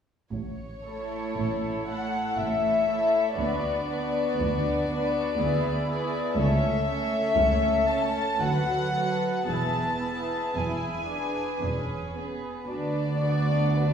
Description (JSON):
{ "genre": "classical, slow romantic movement for string orchestra", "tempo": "55-62 BPM", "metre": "3/4", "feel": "rubato", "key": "A major", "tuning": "A4 = 441 Hz", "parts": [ { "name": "warm studio violin section", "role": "melody", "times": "0.3-13.9 s", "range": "C#5 to A5", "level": "-27 LUFS", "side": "left 4 dB", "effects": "none" }, { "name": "dark studio cello section", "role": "bass", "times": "0.3-13.9 s", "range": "C#2 to A2", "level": "-33 LUFS", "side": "right 2 dB", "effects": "none" }, { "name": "dark studio double bass section", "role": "bass", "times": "0.3-13.9 s", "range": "E1 to D2", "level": "-32 LUFS", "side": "right 2 dB", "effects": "none" }, { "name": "clear studio violin section", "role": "second line", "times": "0.9-13.9 s", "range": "D4 to D5", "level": "-33 LUFS", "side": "right 1 dB", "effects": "none" }, { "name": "warm studio viola section", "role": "accompaniment", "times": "0.9-13.9 s", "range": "F#3 to F#4", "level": "-31 LUFS", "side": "right 3 dB", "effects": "none" } ], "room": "wet recital hall reverb, RT60 1.6 s", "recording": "recorded in a church or concert hall", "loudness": "-24 LUFS", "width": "side -8 dB against mid", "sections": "0.3-13.9 A section", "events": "none", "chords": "0.3 A; 3.4 Bm/D; 5.4 E7/D; 6.4 A/C#; 8.4 Bm7/D; 9.5 E; 12.7 Bm/D" }